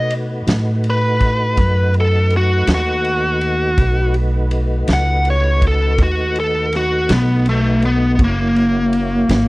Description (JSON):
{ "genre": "slow blues", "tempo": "54 BPM (dotted quarters)", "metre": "12/8", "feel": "straight", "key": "unclear", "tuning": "A4 = 440 Hz", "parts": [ { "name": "biting lead guitar", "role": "melody", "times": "0.0-9.5 s", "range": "A3 to F#5", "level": "-17 LUFS", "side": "equal", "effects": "overdrive" }, { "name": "tonewheel organ", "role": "sustained chords", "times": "0.0-9.5 s", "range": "A3 to C#5", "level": "-26 LUFS", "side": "right 1 dB", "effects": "chorus vibrato, slow rotary speaker" }, { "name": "upright bass", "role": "bass", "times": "0.0-9.5 s", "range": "F#1 to B2", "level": "-17 LUFS", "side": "equal", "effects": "none" }, { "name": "raw garage drum kit", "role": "drums", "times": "0.1-9.5 s", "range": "kick drum, ride cymbal, snare drum", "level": "-19 LUFS", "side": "equal", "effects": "none" } ], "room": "little or no reverb", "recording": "dry, close 1970s-style studio recording", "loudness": "-14 LUFS", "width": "side -21 dB against mid", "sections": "0.0-9.5 A section", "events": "lead electric guitar solo 0.0-9.5", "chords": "0.0 B7; 8.2 F#7" }